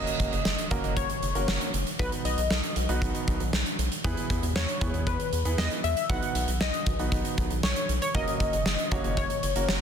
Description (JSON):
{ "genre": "synth-pop", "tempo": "117 BPM", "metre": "4/4", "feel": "straight", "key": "F# mixolydian", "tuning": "A4 = 440 Hz", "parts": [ { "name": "funky polysynth comp", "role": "melody", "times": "0.0-9.8 s", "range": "B4 to F#5", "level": "-31 LUFS", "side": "left 3 dB", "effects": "chorus, tape echo" }, { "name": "clear concert grand piano", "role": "accompaniment", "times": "0.0-9.8 s", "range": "A#3 to C#5", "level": "-35 LUFS", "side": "right 3 dB", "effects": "none" }, { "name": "rubbery square bass", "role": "bass", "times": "0.0-9.8 s", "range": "F#1 to E2", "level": "-30 LUFS", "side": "equal", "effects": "none" }, { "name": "impact", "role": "sound effects", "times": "0.0-2.0 s", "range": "none", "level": "-46 LUFS", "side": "equal", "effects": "none" }, { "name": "huge arena drum kit", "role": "drums", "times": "0.1-9.8 s", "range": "hi-hat, kick drum, snare drum", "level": "-28 LUFS", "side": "equal", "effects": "none" } ], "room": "light reverb, small room ambience", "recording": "dense, heavily limited modern master", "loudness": "-25 LUFS", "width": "side -8 dB against mid", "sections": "0.0-9.8 A section", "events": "impact 0.0-2.0", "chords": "0.0 F#; 2.0 B; 4.0 E; 6.1 B; 8.1 F#", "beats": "0.46 0.97 1.48 | 1.99 2.51 3.02 3.53 | 4.04 4.56 5.07 5.58 | 6.10 6.61 7.12 7.63 | 8.15 8.66 9.17 9.69" }